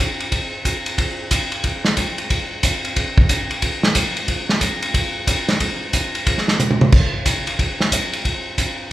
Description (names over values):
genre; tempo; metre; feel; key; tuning
jazz; 182 BPM; 4/4; swing 64% on 8ths; none; none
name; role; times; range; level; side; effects
warm soul drum kit; drums; 0.2-8.7 s; crash cymbal, hi-hat, kick drum, ride cymbal, snare drum, toms; -17 LUFS; equal; none
room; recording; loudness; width
moderate recital hall reverb, RT60 1.8 s; recorded in a church or concert hall; -17 LUFS; side -15 dB against mid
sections
0.0-8.9 A section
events
drum fill 6.6-6.9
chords
none